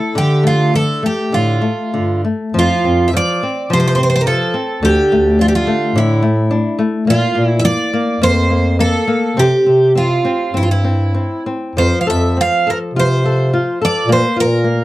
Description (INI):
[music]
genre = fado-style ballad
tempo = 103 BPM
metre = 4/4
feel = uneven beats, rubato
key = F major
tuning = A4 = 440 Hz
[part]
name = picked twelve-string acoustic guitar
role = melody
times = 0.0-14.8 s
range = E4 to F5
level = -16 LUFS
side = right 2 dB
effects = none
[part]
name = flamenco guitar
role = accompaniment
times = 0.0-14.8 s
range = D3 to A4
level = -18 LUFS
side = left 3 dB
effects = none
[part]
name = breathy bass clarinet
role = bass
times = 0.2-14.8 s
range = D2 to D3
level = -16 LUFS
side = equal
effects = none
[sound]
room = light reverb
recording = dry, close 1970s-style studio recording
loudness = -12 LUFS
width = side -16 dB against mid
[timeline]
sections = 0.0-2.5 A section; 2.5-14.8 B section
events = none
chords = 0.2 Dm; 2.5 F; 4.8 Dsus2; 7.1 Bb; 9.4 C; 11.8 F; 14.1 Bb5